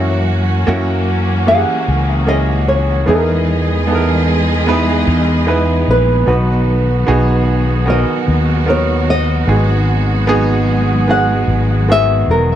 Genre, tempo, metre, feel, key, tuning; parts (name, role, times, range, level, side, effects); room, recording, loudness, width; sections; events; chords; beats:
pop; 75 BPM; 4/4; straight; B major; A4 = 438 Hz
flamenco guitar; melody; 0.0-12.6 s; A#4 to F#5; -17 LUFS; left 1 dB; ping-pong delay
warm concert grand piano; accompaniment; 0.0-12.6 s; G#2 to B4; -17 LUFS; right 2 dB
warm studio string section; sustained chords; 0.0-12.6 s; D#3 to D#5; -20 LUFS; equal
fretless electric bass; bass; 0.0-12.6 s; E1 to F#2; -15 LUFS; left 1 dB
small room ambience; dark, warm production; -12 LUFS; side -11 dB against mid
0.0-12.6 A section
0.0 F#7; 3.1 Emaj7; 6.3 Bmaj7; 9.5 G#m7
0.68 1.48 2.28 | 3.08 3.88 4.68 5.48 | 6.28 7.08 7.88 8.68 | 9.48 10.28 11.08 11.88